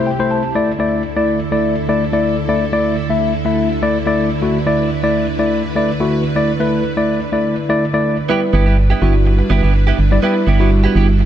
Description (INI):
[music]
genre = pop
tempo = 124 BPM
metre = 4/4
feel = straight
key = G major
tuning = A4 = 440 Hz
[part]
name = tine electric piano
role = accompaniment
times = 0.0-11.1 s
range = G3 to A5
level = -16 LUFS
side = left 2 dB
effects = none
[part]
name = string machine, violas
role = sustained chords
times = 0.0-11.3 s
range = C2 to B4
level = -21 LUFS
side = right 2 dB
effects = ensemble chorus
[part]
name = direct-recorded clean electric guitar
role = riff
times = 8.3-11.2 s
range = B3 to G4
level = -21 LUFS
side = right 8 dB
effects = lush chorus
[part]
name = organ-like FM bass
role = bass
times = 8.5-11.3 s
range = G1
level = -13 LUFS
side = right 1 dB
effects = none
[sound]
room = light reverb, digital ambience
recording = none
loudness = -13 LUFS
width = side -10 dB against mid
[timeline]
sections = 0.0-8.3 A section; 8.3-11.3 B section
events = tine electric piano fill 0.0-0.6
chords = 0.0 C6; 0.6 Dsus2; 8.3 G6